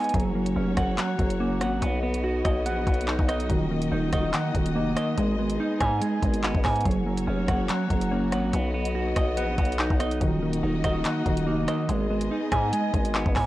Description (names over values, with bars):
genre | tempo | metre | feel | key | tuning
hip hop, drill | 143 BPM | 4/4 | half-time | unclear | A4 = 441 Hz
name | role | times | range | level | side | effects
soft electric-piano-like synth keys | accompaniment | 0.0-13.5 s | Gb3 to Ab5 | -32 LUFS | left 3 dB | chorus
dark symphonic string section | sustained chords | 0.0-13.5 s | Bb3 to Eb5 | -34 LUFS | left 3 dB | none
semi-hollow electric guitar | arpeggios | 0.0-13.5 s | Eb3 to Ab5 | -27 LUFS | right 2 dB | spring reverb, analog delay
drill drum kit | drums | 0.0-13.5 s | handclaps, hi-hat, kick drum, rim click | -27 LUFS | equal | none
growling 808-style bass | bass | 0.1-13.5 s | Eb1 to Ab2 | -29 LUFS | equal | none
room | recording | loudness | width
digital ambience | dry, gritty hardware recording, cassette tape | -23 LUFS | side -15 dB against mid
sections
0.1-13.5 A section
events
none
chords
0.1 Gb; 1.8 B; 3.5 Ebm; 5.2 Abm; 6.9 Gb; 8.5 B; 10.2 Ebm; 11.9 Abm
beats
| 0.14 0.56 0.98 1.40 | 1.82 2.24 2.66 3.08 | 3.50 3.92 4.34 4.76 | 5.18 5.60 6.01 6.43 | 6.86 7.27 7.69 8.11 | 8.53 8.95 9.37 9.79 | 10.21 10.63 11.05 11.47 | 11.89 12.31 12.73 13.15